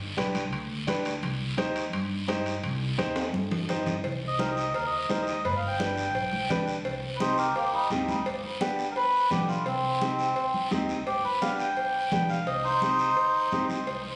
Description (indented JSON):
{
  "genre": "latin, cumbia",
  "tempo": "171 BPM",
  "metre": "4/4",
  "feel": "straight",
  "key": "C harmonic minor",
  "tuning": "A4 = 440 Hz",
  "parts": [
    { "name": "upright bass", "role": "bass", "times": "0.0-14.2 s", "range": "G1 to G2", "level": "-38 LUFS", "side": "equal", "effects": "none" },
    { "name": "clear upright piano", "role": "accompaniment", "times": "0.2-13.8 s", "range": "B3 to C5", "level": "-34 LUFS", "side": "equal", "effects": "none" },
    { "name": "congas", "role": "percussion", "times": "0.2-14.2 s", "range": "none", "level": "-37 LUFS", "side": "equal", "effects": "none" },
    { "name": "guiro", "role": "percussion", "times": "0.2-14.2 s", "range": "none", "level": "-41 LUFS", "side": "equal", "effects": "none" },
    { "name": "timbales and cowbell", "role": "percussion", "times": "0.2-14.0 s", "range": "none", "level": "-39 LUFS", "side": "equal", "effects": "none" },
    { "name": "melodica", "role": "melody", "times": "4.3-13.7 s", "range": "G3 to G5", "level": "-29 LUFS", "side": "equal", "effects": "plate reverb, tape echo" }
  ],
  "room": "moderate studio reverb, RT60 0.8 s",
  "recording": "recorded on a phone in the room, studio reverb, compression",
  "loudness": "-28 LUFS",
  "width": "mono",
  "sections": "0.0-4.0 A section; 4.0-14.2 B section",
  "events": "drum fill 3.2-4.0; melodica solo 4.0-14.2",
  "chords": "0.0 G; 1.2 Cm; 5.4 G; 6.9 Cm; 8.3 G; 9.7 Cm; 11.1 G; 12.5 Cm"
}